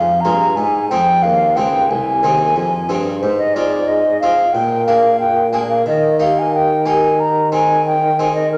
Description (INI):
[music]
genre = classical, baroque-style sonata movement with continuo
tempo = 90 BPM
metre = 4/4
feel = straight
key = Ab major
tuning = A4 = 438 Hz
[part]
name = baroque flute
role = melody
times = 0.0-8.6 s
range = Bb4 to Bb5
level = -17 LUFS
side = equal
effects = none
[part]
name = harpsichord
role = accompaniment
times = 0.0-8.6 s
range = C2 to Ab4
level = -24 LUFS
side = equal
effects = none
[part]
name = mellow bassoon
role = bass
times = 0.0-8.6 s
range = C2 to Eb3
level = -22 LUFS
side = equal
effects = none
[sound]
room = wet recital hall reverb, RT60 1.5 s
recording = none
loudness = -15 LUFS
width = mono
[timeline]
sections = 0.0-8.6 A section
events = none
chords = 0.0 Db (rootless); 0.6 Ab; 3.2 Fm/Ab; 4.5 Bb7; 5.9 Eb; 7.2 Ab/Eb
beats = | 0.57 1.24 1.90 2.56 | 3.22 3.89 4.55 5.21 | 5.87 6.53 7.19 7.86 | 8.52